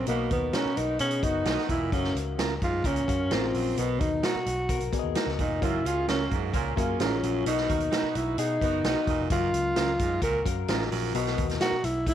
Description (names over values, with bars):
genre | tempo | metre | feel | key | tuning
uptempo 1960s-style soul | 130 BPM | 4/4 | straight | unclear | A4 = 441 Hz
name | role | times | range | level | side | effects
breathy tenor saxophone | melody | 0.0-12.1 s | A#3 to A#4 | -28 LUFS | equal | none
raspy baritone saxophone | riff | 0.0-11.5 s | F#2 to B2 | -36 LUFS | right 10 dB | none
vintage muted picked electric bass | bass | 0.0-12.1 s | E1 to B2 | -33 LUFS | equal | none
mellow horn section | second line | 0.1-1.8, 5.6-9.2 s | D#3 to B4 | -36 LUFS | right 12 dB | tape echo
reed electric piano | accompaniment | 0.1-11.8 s | B2 to E#5 | -35 LUFS | left 12 dB | overdrive
vintage drum kit | drums | 0.1-12.1 s | hi-hat, kick drum, snare drum | -31 LUFS | equal | none
mellow electric guitar | stabs | 0.5-11.8 s | C#4 to A#4 | -36 LUFS | right 10 dB | none
electric guitar through a small old amp | riff | 0.8-12.1 s | D#4 to A#4 | -37 LUFS | left 12 dB | wide subtle chorus
room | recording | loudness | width
light reverb, studio reverb | 1960s-style stereo with parts hard left and right | -24 LUFS | side -10 dB against mid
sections
0.0-12.1 A section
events
tenor saxophone solo 0.0-12.1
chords
0.1 Bmaj7; 1.9 F#maj7; 3.8 Bmaj7; 5.6 F#maj7; 7.5 Bmaj7; 9.3 F#maj7; 11.1 Bmaj7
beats
| 0.08 0.54 1.00 1.46 | 1.92 2.39 2.85 3.31 | 3.77 4.23 4.69 5.16 | 5.62 6.08 6.54 7.00 | 7.46 7.92 8.38 8.85 | 9.31 9.77 10.23 10.69 | 11.15 11.61 12.07